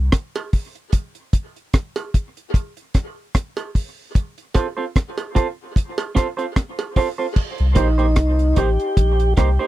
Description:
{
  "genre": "dub reggae",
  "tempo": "75 BPM",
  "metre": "4/4",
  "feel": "swing 56% on 16ths",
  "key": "C dorian",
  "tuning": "A4 = 441 Hz",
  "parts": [
    { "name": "soft dub sub bass", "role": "bass", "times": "0.0-0.1, 7.6-9.6 s", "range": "A1 to C2", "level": "-17 LUFS", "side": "equal", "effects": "none" },
    { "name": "deep reggae drum kit", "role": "drums", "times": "0.1-9.6 s", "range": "crash cymbal, hi-hat, kick drum, rim click", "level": "-17 LUFS", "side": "equal", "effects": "none" },
    { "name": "cowbell", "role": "percussion", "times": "0.4-7.0 s", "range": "none", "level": "-29 LUFS", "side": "right 4 dB", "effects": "dub echo" },
    { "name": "clean electric guitar", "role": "accompaniment", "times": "4.5-9.7 s", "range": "Bb3 to C5", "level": "-24 LUFS", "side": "right 5 dB", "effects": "dub echo" },
    { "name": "mellow tonewheel organ", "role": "melody", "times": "7.8-9.3 s", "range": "Eb4 to G4", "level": "-21 LUFS", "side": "equal", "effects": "slow rotary speaker, dub echo" }
  ],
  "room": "little or no reverb",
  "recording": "dry, close 1970s-style studio recording",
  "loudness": "-18 LUFS",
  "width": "side -15 dB against mid",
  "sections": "0.0-7.4 A section; 7.4-9.7 B section",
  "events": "break 0.0-4.1",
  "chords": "0.0 N.C.; 4.1 Csus4; 7.4 Cm7"
}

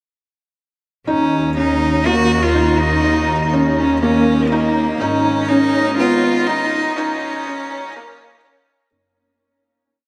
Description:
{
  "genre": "piano and strings electronica",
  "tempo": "122 BPM",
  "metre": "4/4",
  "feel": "straight",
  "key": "Eb minor",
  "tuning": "A4 = 441 Hz",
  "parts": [
    { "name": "clear cello", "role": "melody", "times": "1.1-8.4 s", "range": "Bb3 to Gb4", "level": "-21 LUFS", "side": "equal", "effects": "analog delay" },
    { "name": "felt-muted upright piano", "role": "riff", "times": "1.1-8.9 s", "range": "Bb3 to Eb4", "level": "-20 LUFS", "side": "equal", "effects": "ensemble chorus, analog delay" },
    { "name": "warm studio double bass section", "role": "bass", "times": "1.1-8.9 s", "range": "Gb1 to Eb2", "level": "-25 LUFS", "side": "equal", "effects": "tube saturation" }
  ],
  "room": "wet huge ambient reverb, RT60 8.3 s",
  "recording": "dreamy mix soaked in reverb, high-pass filter",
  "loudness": "-16 LUFS",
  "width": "mono",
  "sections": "1.1-8.9 build",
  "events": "build-up 1.1-8.9; fade-out 6.3-8.9",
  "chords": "1.1 Eb5; 5.0 Abm; 7.0 Gb"
}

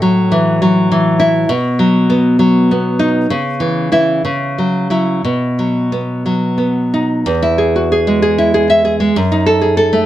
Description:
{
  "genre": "romantic piece for solo classical guitar",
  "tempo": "58-69 BPM (dotted quarters)",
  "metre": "6/8",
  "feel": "rubato",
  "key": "E major",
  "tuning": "A4 = 439 Hz",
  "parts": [
    { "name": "nylon-string guitar", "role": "solo", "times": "0.0-10.1 s", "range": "E2 to E5", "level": "-11 LUFS", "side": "equal", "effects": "slapback echo" }
  ],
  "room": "light reverb",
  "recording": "none",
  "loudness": "-11 LUFS",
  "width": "side -13 dB against mid",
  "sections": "0.0-7.3 A section; 7.3-10.1 B section",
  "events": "none",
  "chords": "0.0 F#m7/A; 1.5 B; 3.3 C#m; 4.3 F#5/C#; 5.2 B; 7.3 E; 9.2 D#dim/F#"
}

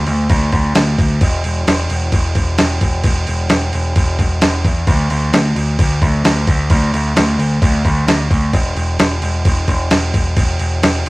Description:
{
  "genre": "hard rock",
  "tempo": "131 BPM",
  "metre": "4/4",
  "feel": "straight",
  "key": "unclear",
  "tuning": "A4 = 440 Hz",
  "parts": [
    { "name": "growling picked electric bass", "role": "bass", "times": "0.0-11.1 s", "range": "E1 to E2", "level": "-16 LUFS", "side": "equal", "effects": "overdrive" },
    { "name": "dusty soul sampler-style drum kit", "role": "drums", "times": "0.1-11.1 s", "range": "crash cymbal, kick drum, snare drum", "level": "-15 LUFS", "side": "equal", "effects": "none" }
  ],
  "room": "light reverb",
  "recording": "rough rehearsal-room recording",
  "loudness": "-13 LUFS",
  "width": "side -22 dB against mid",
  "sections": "0.0-11.1 A section",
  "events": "none",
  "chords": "none"
}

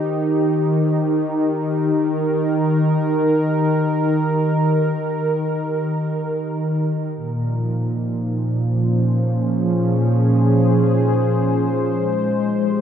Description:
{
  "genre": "ambient",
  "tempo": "free time",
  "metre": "none",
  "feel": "none",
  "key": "unclear",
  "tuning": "A4 = 439 Hz",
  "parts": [
    { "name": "warm analog pad", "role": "solo", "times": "0.0-12.8 s", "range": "Bb2 to C5", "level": "-17 LUFS", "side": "equal", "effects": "chorus, diffuse ambient delay" }
  ],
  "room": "wet cathedral reverb, RT60 5.8 s",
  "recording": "in a vast, echoing space",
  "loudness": "-17 LUFS",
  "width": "side -8 dB against mid",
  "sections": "0.0-7.2 A section; 7.2-12.8 B section",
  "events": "none",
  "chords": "0.0 Eb; 7.2 Bbm11; 11.9 Abmaj7"
}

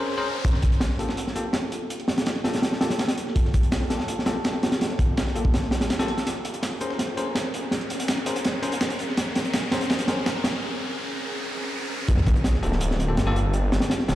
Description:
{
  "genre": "drum and bass, jungle",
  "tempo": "165 BPM",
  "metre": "4/4",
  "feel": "straight",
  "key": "G minor",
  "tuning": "A4 = 440 Hz",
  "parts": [
    { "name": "ethereal airy pad", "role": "sustained chords", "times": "0.0-14.2 s", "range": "Bb3 to Bb4", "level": "-32 LUFS", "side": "equal", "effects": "ensemble chorus, built-in reverb" },
    { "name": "bell-like tine electric piano", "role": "stabs", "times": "0.0-10.2, 12.6-14.2 s", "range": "Bb3 to C5", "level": "-31 LUFS", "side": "left 2 dB", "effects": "low-pass filter, dub echo" },
    { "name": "riser and sub drop", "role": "sound effects", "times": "0.0-13.5 s", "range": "none", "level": "-33 LUFS", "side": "equal", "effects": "none" },
    { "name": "crunchy breakbeat drum kit", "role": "drums", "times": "0.4-14.2 s", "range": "hi-hat, kick drum, snare drum", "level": "-24 LUFS", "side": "equal", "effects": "none" },
    { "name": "dusty soul sampler-style drum kit", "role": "drums", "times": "0.4-10.5 s", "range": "hi-hat, snare drum", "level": "-37 LUFS", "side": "right 2 dB", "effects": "high-pass filter on hats, high-pass filter on snare, high-pass filter on room" },
    { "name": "detuned saw bass", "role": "bass", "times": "12.1-14.2 s", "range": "D1 to G1", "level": "-23 LUFS", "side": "equal", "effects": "none" }
  ],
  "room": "moderate echo chamber reverb, RT60 1.5 s, small room reverb",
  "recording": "played on a big sound system in a bare room, large studio reverb",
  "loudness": "-22 LUFS",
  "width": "side -14 dB against mid",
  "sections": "0.4-12.1 A section; 12.1-14.2 B section",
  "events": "riser 0.0-0.4, 0.4-12.1; build-up 0.4-12.1; filter sweep on ambient pad 0.4-12.1; filter sweep on tine electric piano 0.4-12.1; drum fill 6.3-10.6; break 10.6-12.1; drop 12.1-14.2; impact 12.1-13.5",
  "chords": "0.4 Gm9; 6.3 Bbm9; 12.1 Gm9"
}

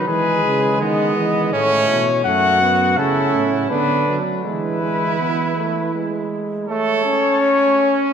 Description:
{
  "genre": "classical, imitative canzona for brass ensemble",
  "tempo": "82 BPM",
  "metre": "3/4",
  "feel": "straight",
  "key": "A major",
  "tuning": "A4 = 439 Hz",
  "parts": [
    { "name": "warm cornet", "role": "melody", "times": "0.0-8.1 s", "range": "A4 to F#5", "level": "-19 LUFS", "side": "left 5 dB", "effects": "none" },
    { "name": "clear trumpet", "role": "second line", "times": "0.0-8.1 s", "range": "B3 to A4", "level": "-22 LUFS", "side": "right 4 dB", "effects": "none" },
    { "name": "clear trombone", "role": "accompaniment", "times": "0.0-8.1 s", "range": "F#3 to C#4", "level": "-22 LUFS", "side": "right 3 dB", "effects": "none" },
    { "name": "dark bass trombone", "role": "bass", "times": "0.0-6.3 s", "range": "F#2 to E3", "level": "-24 LUFS", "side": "right 3 dB", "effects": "none" }
  ],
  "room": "wet church reverb, RT60 3.7 s",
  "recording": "none",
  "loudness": "-16 LUFS",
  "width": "side -7 dB against mid",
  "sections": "0.0-6.7 A section; 6.7-8.1 B section",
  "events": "none",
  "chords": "0.1 E; 1.5 A; 2.3 F#m; 3.7 Bm/D; 4.5 E; 6.7 A"
}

